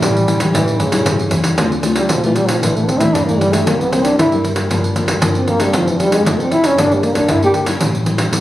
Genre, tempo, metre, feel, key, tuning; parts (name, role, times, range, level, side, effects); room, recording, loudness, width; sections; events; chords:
samba and choro; 116 BPM; 4/4; straight; D minor; A4 = 438 Hz
breathy trombone; second line; 0.0-7.5 s; C#3 to G4; -16 LUFS; equal
nylon-string guitar; accompaniment; 0.0-8.4 s; G2 to A4; -19 LUFS; left 3 dB
upright bass; bass; 0.0-8.4 s; F1 to A2; -20 LUFS; equal
pandeiro; percussion; 0.0-8.4 s; -19 LUFS; right 1 dB
moderate studio reverb, RT60 0.8 s; recorded on a phone in the room, club reverb, compression; -13 LUFS; side -14 dB against mid
0.0-1.6 A section; 1.6-8.4 B section
trombone solo 1.6-8.4
0.0 A7; 1.6 Dm7; 2.6 Asus4; 3.7 C7; 4.7 Gm7; 5.7 Dm7/F; 6.8 Gmadd9; 7.8 A7